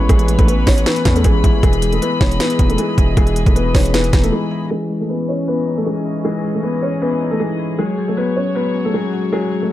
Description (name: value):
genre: hip hop, trap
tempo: 156 BPM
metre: 4/4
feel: half-time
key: unclear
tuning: A4 = 441 Hz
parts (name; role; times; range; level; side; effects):
- dark concert grand piano; melody; 0.0-9.7 s; G#3 to C#5; -20 LUFS; equal; low-pass filter, digital delay
- bell-like tine electric piano; accompaniment; 0.0-9.7 s; E3 to F#4; -22 LUFS; left 4 dB; wide subtle chorus, low-pass filter
- dark studio string section; sustained chords; 0.0-9.7 s; E3 to B5; -27 LUFS; left 1 dB; low-pass filter
- distorted 808-style bass; bass; 0.0-4.3 s; E1 to E2; -17 LUFS; right 1 dB; distortion
- trap drum kit; drums; 0.1-4.3 s; hi-hat, kick drum, snare drum; -15 LUFS; equal; none
room: digital ambience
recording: dark, warm production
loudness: -14 LUFS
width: side -14 dB against mid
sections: 0.0-4.7 A section; 4.7-9.7 B section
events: break 4.3-4.7; filter sweep 4.7-9.7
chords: 0.0 Aadd9; 1.6 Emaj7; 7.8 F#madd9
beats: | 0.09 0.48 0.86 1.25 | 1.63 2.02 2.40 2.79 | 3.17 3.56 3.94 4.32 | 4.71 5.09 5.48 5.86 | 6.25 6.63 7.02 7.40 | 7.79 8.17 8.55 8.94 | 9.32 9.71